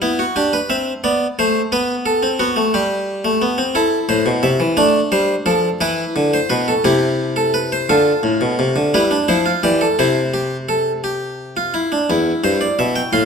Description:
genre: classical, baroque-style 3-part fugue for harpsichord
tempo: 58 BPM (dotted quarters)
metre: 6/8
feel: straight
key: A minor, C major from 7.9 s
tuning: A4 = 440 Hz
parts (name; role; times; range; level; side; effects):
- harpsichord; solo; 0.0-13.3 s; E2 to C6; -15 LUFS; equal; none
room: moderate recital hall reverb, RT60 1.2 s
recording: close, detailed microphones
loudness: -15 LUFS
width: side -6 dB against mid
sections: 0.0-7.9 A section; 7.9-12.1 B section; 12.1-13.3 C section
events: none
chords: 0.0 Em; 0.7 Am; 1.7 B5; 2.7 Gadd9; 3.8 Am; 4.8 Dm; 5.8 E5; 6.8 Am/C; 7.9 Dm7; 8.9 G7; 10.0 C; 12.1 C/E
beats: 0.70 | 1.73 2.74 | 3.76 4.78 | 5.82 6.85 | 7.89 8.93 | 9.98 11.04 | 12.09 13.13

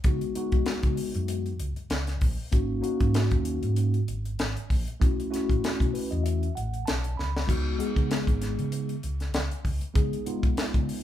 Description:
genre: electric jazz fusion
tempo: 97 BPM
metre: 4/4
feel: swing 55% on 16ths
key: unclear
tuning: A4 = 440 Hz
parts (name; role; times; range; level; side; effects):
- mellow tine electric piano; accompaniment; 0.0-11.0 s; Ab3 to Cb6; -30 LUFS; left 2 dB; medium stereo tremolo
- hollow-body short-scale fingered electric bass; bass; 0.0-10.9 s; Ab1 to Db3; -30 LUFS; right 1 dB; none
- tight funk drum kit; drums; 0.0-11.0 s; crash cymbal, hi-hat, kick drum, snare drum; -27 LUFS; equal; none
room: light reverb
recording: band playing live in one room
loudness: -25 LUFS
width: side -12 dB against mid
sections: 0.0-11.0 A section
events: tine electric piano fill 5.6-7.5; drum fill 7.2-7.5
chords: 0.0 Db9sus4; 2.5 Ab9sus4; 5.0 Cb9sus4; 7.5 Db7sus2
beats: | 0.05 0.67 1.29 1.91 | 2.53 3.15 3.77 4.39 | 5.01 5.63 6.25 6.87 | 7.48 8.10 8.72 9.34 | 9.96 10.57

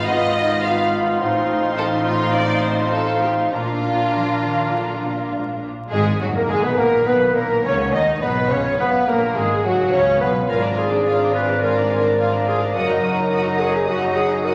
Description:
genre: classical, dramatic, fast romantic movement for symphony orchestra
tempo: 105 BPM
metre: 4/4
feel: straight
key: Eb minor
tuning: A4 = 439 Hz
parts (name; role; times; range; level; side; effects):
- warm symphonic violin section; melody; 0.0-14.5 s; Gb4 to Eb6; -33 LUFS; equal; none
- mellow clarinet; second line; 0.0-14.5 s; D4 to Eb5; -28 LUFS; equal; none
- mellow hollow silver concert flute; second line; 0.0-14.5 s; Gb4 to F5; -28 LUFS; equal; none
- rich symphonic violin section; second line; 0.0-14.5 s; F4 to Gb5; -29 LUFS; equal; none
- mellow bassoon; accompaniment; 0.0-14.5 s; F3 to Eb4; -29 LUFS; equal; none
- rich symphonic viola section; accompaniment; 0.0-14.5 s; Gb3 to Gb4; -29 LUFS; equal; none
- concert harp; arpeggios; 0.0-14.5 s; Gb2 to Gb5; -31 LUFS; equal; none
- rich studio cello section; bass; 0.0-14.5 s; Gb2 to F3; -32 LUFS; equal; none
- rich symphonic double bass section; bass; 0.0-14.5 s; Gb1 to Eb2; -30 LUFS; equal; none
- warm French horn section; sustained chords; 0.1-14.5 s; Cb4 to Eb5; -26 LUFS; equal; none
room: wet recital hall reverb, RT60 1.6 s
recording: vinyl crackle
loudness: -19 LUFS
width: mono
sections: 0.0-5.9 A section; 5.9-14.5 B section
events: none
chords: 0.0 Fm7b5/Ab; 1.2 F7/A; 3.5 Bb; 5.9 Ebm; 8.2 Fdim; 10.5 Bb7/Ab; 12.8 Ebm/Gb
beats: 0.07 0.64 | 1.21 1.79 2.36 2.94 | 3.54 4.14 4.73 5.33 | 5.93 6.50 7.07 7.65 | 8.22 8.80 9.37 9.93 | 10.49 11.06 11.62 12.19 | 12.76 13.32 13.88 14.45

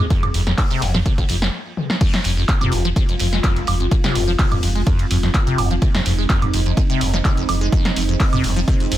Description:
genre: acid house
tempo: 126 BPM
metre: 4/4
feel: straight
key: F minor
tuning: A4 = 441 Hz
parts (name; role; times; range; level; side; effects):
- dark analog pad; sustained chords; 0.0-9.0 s; Ab3 to Ab4; -27 LUFS; right 3 dB; chorus, sidechain pumping
- liquid acid bass; riff; 0.0-9.0 s; F2 to Ab3; -23 LUFS; left 1 dB; phaser, tube saturation, lush chorus, vintage 12-bit sampler grit, sidechain pumping, dub echo
- round analog bass; bass; 0.0-9.0 s; F1; -21 LUFS; equal; sidechain pumping
- electronic kick drum; drums; 0.1-8.8 s; none; -17 LUFS; equal; overdrive
- punchy analog drum machine; drums; 0.1-9.0 s; crash cymbal, handclaps, hi-hat, snare drum, toms, woodblock; -23 LUFS; right 1 dB; none
- warm soul drum kit; drums; 0.1-9.0 s; hi-hat, ride cymbal, snare drum; -35 LUFS; right 3 dB; high-pass filter on cymbals, high-pass filter on hats, high-pass filter on snare, high-pass filter on room
room: light reverb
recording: dense, heavily limited modern master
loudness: -16 LUFS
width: side -13 dB against mid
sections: 0.0-2.0 A section; 2.0-9.0 B section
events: stop 1.5-2.0; drum fill 1.8; drop 2.0-9.0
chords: 0.0 Fm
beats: | 0.10 0.58 1.06 1.53 | 2.01 2.49 2.96 3.44 | 3.92 4.39 4.87 5.34 | 5.82 6.30 6.77 7.25 | 7.72 8.20 8.68

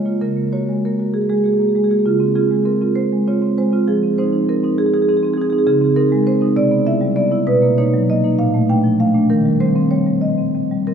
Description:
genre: classical, contemporary piece for solo marimba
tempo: 66 BPM (dotted quarters)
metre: 6/8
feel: rubato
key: unclear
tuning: A4 = 439 Hz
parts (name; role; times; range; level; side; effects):
- marimba with medium hard mallets; solo; 0.0-10.9 s; Bb2 to G5; -14 LUFS; right 1 dB; none
room: wet church reverb, RT60 3.1 s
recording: studio ambience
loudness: -14 LUFS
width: side -7 dB against mid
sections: 0.0-10.9 A section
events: none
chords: 0.2 Gbadd9/Db; 2.1 Dbmaj7; 3.9 Fm7; 5.7 Dbsus2; 6.6 Cmaj7; 7.5 Bmaj7; 8.4 Bbmaj7; 9.3 Eb6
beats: | 0.22 1.14 | 2.06 2.98 | 3.88 4.78 | 5.68 6.58 | 7.48 8.39 | 9.31 10.23

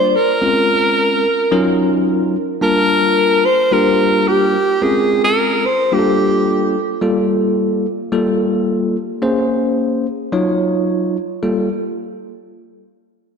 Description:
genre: funk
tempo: 109 BPM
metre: 4/4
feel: straight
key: unclear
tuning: A4 = 439 Hz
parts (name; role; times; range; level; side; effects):
- breathy alto saxophone; melody; 0.0-6.8 s; G4 to C5; -15 LUFS; equal; ping-pong delay
- bell-like tine electric piano; accompaniment; 0.0-11.7 s; Gb3 to A5; -16 LUFS; left 1 dB; fast stereo tremolo
room: wet lush hall reverb, RT60 2.1 s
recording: dreamy mix soaked in reverb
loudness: -14 LUFS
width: side -6 dB against mid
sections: 0.0-7.0 A section; 7.0-11.4 B section; 11.4-13.4 C section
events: none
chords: 0.4 Bbm9; 1.5 Ebm9; 2.6 Gm9; 4.8 Bbm9; 5.9 Gm9; 9.2 Bbm9; 10.3 Ebm9; 11.4 Gm9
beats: | 0.42 0.97 1.52 2.07 | 2.62 3.17 3.72 4.27 | 4.82 5.37 5.92 6.47 | 7.02 7.57 8.12 8.67 | 9.22 9.77 10.32 10.88 | 11.43

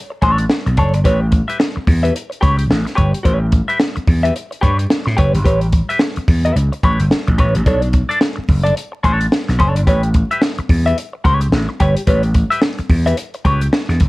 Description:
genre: funk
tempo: 109 BPM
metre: 4/4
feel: swing 60% on 16ths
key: A mixolydian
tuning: A4 = 440 Hz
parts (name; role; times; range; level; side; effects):
- clean electric guitar; accompaniment; 0.1-13.9 s; D4 to E5; -18 LUFS; left 1 dB; wah
- vintage slap bass; bass; 0.2-14.1 s; F#1 to A2; -16 LUFS; equal; none
- compact cocktail drum kit; drums; 0.2-14.1 s; hi-hat, kick drum, snare drum; -16 LUFS; equal; none
room: little or no reverb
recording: vinyl crackle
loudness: -13 LUFS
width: side -21 dB against mid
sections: 0.0-14.1 A section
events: none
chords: 0.0 Bm9 (rootless); 1.0 A9; 7.7 Bm9; 9.9 A9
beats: 0.50 | 1.05 1.60 2.15 2.70 | 3.25 3.80 4.35 4.90 | 5.45 6.01 6.56 7.11 | 7.66 8.21 8.76 9.32 | 9.87 10.42 10.97 11.52 | 12.07 12.63 13.18 13.73

